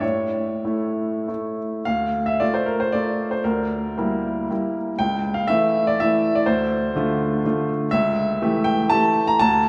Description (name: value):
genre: classical, romantic triple-time dance for piano with dotted rhythms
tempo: 91-131 BPM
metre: 3/4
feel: rubato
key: D minor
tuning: A4 = 440 Hz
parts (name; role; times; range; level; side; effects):
- clear baby grand piano; solo; 0.0-9.7 s; C#2 to Bb5; -22 LUFS; equal; none
room: wet church reverb, RT60 3.1 s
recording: recorded in a church or concert hall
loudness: -22 LUFS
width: mono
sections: 0.0-1.9 A section; 1.9-9.7 B section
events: none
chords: 0.0 A; 1.9 Dm; 3.5 Em7b5/D; 5.0 A/C#; 6.5 Dm; 7.9 A7/C#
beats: | 0.02 0.65 1.29 | 1.88 2.41 2.95 | 3.45 3.97 4.51 | 4.99 5.48 5.99 | 6.46 6.95 7.45 | 7.92 8.41 8.92 | 9.41